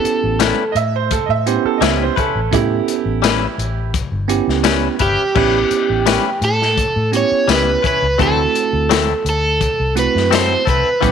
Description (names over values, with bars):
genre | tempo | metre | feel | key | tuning
straight-eighth soul blues | 85 BPM | 4/4 | swing 54% on 16ths | A mixolydian | A4 = 440 Hz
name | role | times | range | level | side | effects
overdriven semi-hollow guitar | melody | 0.0-0.7, 5.0-11.1 s | G4 to C#5 | -17 LUFS | right 2 dB | none
bell-like tine electric piano | accompaniment | 0.0-11.1 s | G3 to A4 | -20 LUFS | right 13 dB | fast stereo tremolo
vintage muted fingered electric bass | bass | 0.0-11.1 s | G1 to A2 | -21 LUFS | left 1 dB | none
crunchy breakbeat drum kit | drums | 0.1-11.1 s | crash cymbal, hi-hat, kick drum, snare drum, tambourine | -20 LUFS | left 6 dB | none
direct-recorded clean electric guitar | stabs | 0.4-11.1 s | E3 to B4 | -21 LUFS | left 12 dB | none
bright upright piano | second line | 0.7-3.9 s | E4 to E5 | -20 LUFS | right 11 dB | none
room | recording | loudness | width
light reverb, small room reverb | 1960s-style stereo with parts hard left and right | -14 LUFS | side -7 dB against mid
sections
0.0-5.4 A section; 5.4-11.1 A section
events
none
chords
0.0 A9; 8.2 D9